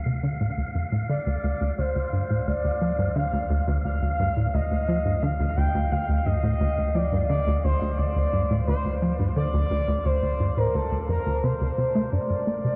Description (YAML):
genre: ambient, sequencer-driven space music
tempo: 87 BPM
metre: 4/4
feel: straight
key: D phrygian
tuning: A4 = 440 Hz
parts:
  - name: warm sub bass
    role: bass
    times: 0.0-12.8 s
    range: G1 to D2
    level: -32 LUFS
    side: equal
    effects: none
  - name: wind-like tuned noise texture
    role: texture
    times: 0.0-12.1 s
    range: F5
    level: -42 LUFS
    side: equal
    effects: built-in reverb
  - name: tight sequencer bass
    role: riff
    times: 0.1-12.8 s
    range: D2 to Bb3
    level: -27 LUFS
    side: equal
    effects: ensemble chorus, delay
  - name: expressive portamento lead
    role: melody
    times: 1.1-12.8 s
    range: A4 to G5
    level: -30 LUFS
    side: equal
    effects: lush chorus, delay
room: wet huge ambient reverb, RT60 7.8 s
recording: worn, warbling old tape, cassette tape, warbly pitch drift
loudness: -25 LUFS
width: mono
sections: 0.0-12.1 A section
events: none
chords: 0.0 Dm; 12.1 Gm